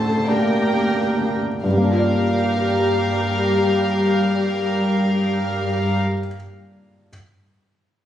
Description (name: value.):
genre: cinematic.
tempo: 44 BPM (dotted quarters).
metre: 6/8.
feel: rubato.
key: G minor.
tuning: A4 = 439 Hz.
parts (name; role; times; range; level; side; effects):
warm studio violin section; second line; 0.0-6.0 s; Bb4 to A5; -25 LUFS; equal; none.
dark symphonic viola section; accompaniment; 0.0-6.0 s; G3 to A4; -22 LUFS; left 1 dB; none.
felt-muted upright piano; accompaniment; 0.0-7.1 s; D2 to D5; -22 LUFS; left 1 dB; none.
warm chamber cello section; bass; 0.0-6.0 s; D2 to G2; -24 LUFS; right 1 dB; none.
room: moderate recital hall reverb, RT60 1.5 s.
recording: recorded on a phone in the room, studio ambience, compression.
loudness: -17 LUFS.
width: side -10 dB against mid.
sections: 0.0-1.6 A section; 1.6-7.1 B section.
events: slowing down 0.0-1.6.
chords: 0.0 Gmadd9/D; 1.6 Gm7.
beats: 0.28 | 1.64 3.00 | 4.36 5.71.